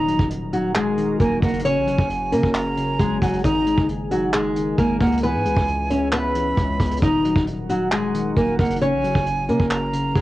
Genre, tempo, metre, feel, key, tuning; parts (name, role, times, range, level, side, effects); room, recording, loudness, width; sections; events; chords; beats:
hip hop, trap; 134 BPM; 4/4; half-time; A4 = 440 Hz
flamenco guitar; melody; 0.0-10.2 s; F#3 to D#5; -22 LUFS; left 1 dB; cassette tape
breathy hollow silver concert flute; second line; 0.0-10.2 s; F#5 to B5; -27 LUFS; right 3 dB; cassette tape, analog delay, plate reverb
soft electric-piano-like synth keys; accompaniment; 0.0-10.2 s; C#3 to D#4; -27 LUFS; left 1 dB; chorus, cassette tape
dark analog pad; sustained chords; 0.0-10.2 s; C#4 to A#5; -34 LUFS; equal; chorus, cassette tape, plate reverb
distorted 808-style bass; bass; 0.0-10.2 s; D#1 to C#3; -29 LUFS; equal; distortion
vintage brush drum kit; drums; 0.1-10.2 s; handclaps, hi-hat, kick drum; -23 LUFS; equal; cassette tape
moderate booth ambience, RT60 0.3 s; home recording on cassette; -18 LUFS; side -16 dB against mid
0.0-10.2 A section
0.0 D#m; 1.6 F#sus2; 3.4 G#sus2; 5.2 C#m7; 7.0 D#m; 8.8 F#sus2
0.31 0.75 1.20 | 1.65 2.10 2.54 2.99 | 3.44 3.89 4.34 4.78 | 5.23 5.68 6.13 6.58 | 7.02 7.47 7.92 8.37 | 8.81 9.26 9.71 10.16